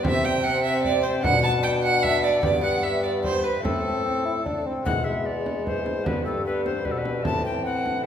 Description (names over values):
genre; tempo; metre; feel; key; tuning
classical, renaissance-style consort dance; 150 BPM; 3/4; straight; A dorian; A4 = 440 Hz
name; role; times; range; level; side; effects
tenor recorder; melody; 0.0-8.0 s; A4 to B5; -29 LUFS; left 3 dB; none
rich violin; second line; 0.0-8.1 s; B3 to A5; -26 LUFS; right 4 dB; none
lute; accompaniment; 0.0-8.1 s; E2 to C5; -31 LUFS; left 2 dB; none
warm bassoon; accompaniment; 0.0-8.0 s; E3 to E4; -29 LUFS; left 2 dB; none
mellow bassoon; bass; 0.0-8.1 s; E2 to C3; -30 LUFS; equal; none
frame drum; percussion; 0.0-8.0 s; none; -30 LUFS; right 1 dB; none
room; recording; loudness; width
wet recital hall reverb, RT60 1.5 s; heard from further back in the room; -21 LUFS; side -8 dB against mid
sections
0.0-4.9 A section; 4.9-8.1 B section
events
none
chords
0.1 Cadd9; 1.2 Bm; 2.4 G; 3.6 Am; 4.9 E; 6.1 G; 7.3 Am